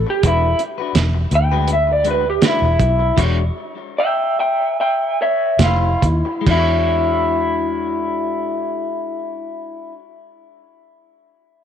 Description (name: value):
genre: straight-eighth soul blues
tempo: 67-84 BPM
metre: 4/4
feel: swing 53% on 16ths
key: E mixolydian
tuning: A4 = 441 Hz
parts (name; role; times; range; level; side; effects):
- electric guitar through a small old amp; melody; 0.0-9.9 s; E4 to G5; -18 LUFS; equal; harmonic tremolo
- vintage muted fingered electric bass; bass; 0.0-9.9 s; E1 to E2; -19 LUFS; equal; none
- electric guitar at the edge of break-up; stabs; 0.1-10.1 s; G#3 to C#5; -26 LUFS; left 10 dB; tape echo
- cloth-damped thuddy drum kit; drums; 0.2-6.7 s; crash cymbal, hi-hat, kick drum, snare drum; -19 LUFS; right 3 dB; none
room: light reverb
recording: 1960s-style stereo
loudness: -15 LUFS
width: side -8 dB against mid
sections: 0.0-6.5 A section; 6.5-10.0 B section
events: slowing down 0.2-6.5; stop 3.2-5.6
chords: 0.2 E9; 3.2 E13; 5.6 F9; 6.5 E13